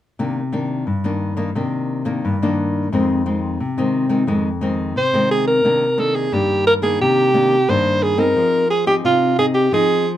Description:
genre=samba and choro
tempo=88 BPM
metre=4/4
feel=straight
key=C minor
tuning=A4 = 440 Hz
part: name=nylon-string guitar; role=accompaniment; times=0.2-10.2 s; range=F2 to Ab4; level=-19 LUFS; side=left 2 dB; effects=none
part: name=breathy alto saxophone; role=melody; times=5.0-10.1 s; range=F4 to C5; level=-16 LUFS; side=right 1 dB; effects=none
room=moderate small room reverb, RT60 0.5 s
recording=none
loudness=-16 LUFS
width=side -12 dB against mid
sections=0.2-5.6 A section; 5.6-10.2 B section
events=none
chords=0.2 Cm9; 2.9 Fm7; 5.6 Cm9; 8.4 Fm7

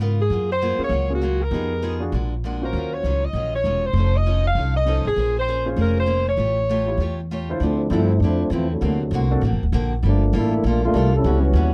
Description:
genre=jazz, big band swing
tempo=198 BPM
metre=4/4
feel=swing 62% on 8ths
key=Bb minor, D minor from 7.6 s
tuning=A4 = 439 Hz
part: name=picked steel-string acoustic guitar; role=accompaniment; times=0.0-11.7 s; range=A2 to C#5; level=-32 LUFS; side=equal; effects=none
part: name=upright bass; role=bass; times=0.0-11.7 s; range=D1 to Ab2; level=-23 LUFS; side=equal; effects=none
part: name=dark saxophone section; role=melody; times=0.2-7.3 s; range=Gb4 to F5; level=-25 LUFS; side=equal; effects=none
part: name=warm grand piano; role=accompaniment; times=0.8-11.7 s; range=D3 to C#5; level=-29 LUFS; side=equal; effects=none
part: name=muted trombone section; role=second line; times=7.6-11.7 s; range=C3 to A4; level=-24 LUFS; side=equal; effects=none
room=little or no reverb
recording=dry, close 1970s-style studio recording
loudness=-21 LUFS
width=mono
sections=0.0-7.6 A section; 7.6-11.7 B section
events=trombone section solo 7.6-11.7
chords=0.3 Gbmaj9; 1.5 Fm7b5; 2.1 Bb7b13; 2.7 Ebm9; 3.9 F7b13; 5.2 Bbm9; 6.4 A7b13; 7.6 Dm9; 8.8 D7b13; 10.0 Gm9; 11.2 A13

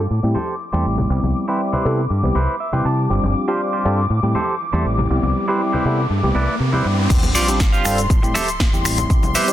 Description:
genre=filtered disco house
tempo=120 BPM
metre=4/4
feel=straight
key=C major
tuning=A4 = 440 Hz
part: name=muted studio violin section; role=sustained chords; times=0.0-9.5 s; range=C6 to D6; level=-27 LUFS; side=left 3 dB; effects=sidechain pumping, low-pass filter
part: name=clean electric guitar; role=riff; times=0.0-9.5 s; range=E4 to A5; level=-24 LUFS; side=right 3 dB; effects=sidechain pumping, low-pass filter
part: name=fingered electric bass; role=bass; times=0.0-9.3 s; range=G1 to C3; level=-20 LUFS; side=equal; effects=sidechain pumping, low-pass filter
part: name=egg shaker and congas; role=percussion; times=0.1-9.5 s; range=none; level=-28 LUFS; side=left 3 dB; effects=sidechain pumping on perc, low-pass filter on perc
part: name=tine electric piano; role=accompaniment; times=0.2-9.5 s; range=G3 to A4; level=-22 LUFS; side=equal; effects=phaser, sidechain pumping, low-pass filter
part: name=riser and sub drop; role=sound effects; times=4.6-9.1 s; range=none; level=-27 LUFS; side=equal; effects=none
part: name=electronic kick drum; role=drums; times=7.1-9.2 s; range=none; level=-16 LUFS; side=equal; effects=none
part: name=punchy analog drum machine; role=drums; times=7.1-9.5 s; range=cabasa, crash cymbal, finger snaps, hi-hat, snare drum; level=-23 LUFS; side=left 1 dB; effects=sidechain pumping on hats, sidechain pumping on cymbals, sidechain pumping on perc
room=light reverb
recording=dense, heavily limited modern master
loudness=-16 LUFS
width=side -12 dB against mid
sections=0.0-7.1 A section; 7.1-9.5 B section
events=filter sweep 0.0-7.1; clean electric guitar fill 2.1-3.1; riser 4.6-7.1; drop 7.1-9.5; impact 7.1-9.1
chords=0.1 Am7; 1.1 Cmaj7; 3.1 G7sus4; 4.1 Am7; 5.1 Cmaj7; 7.1 G7sus4; 8.1 Am7

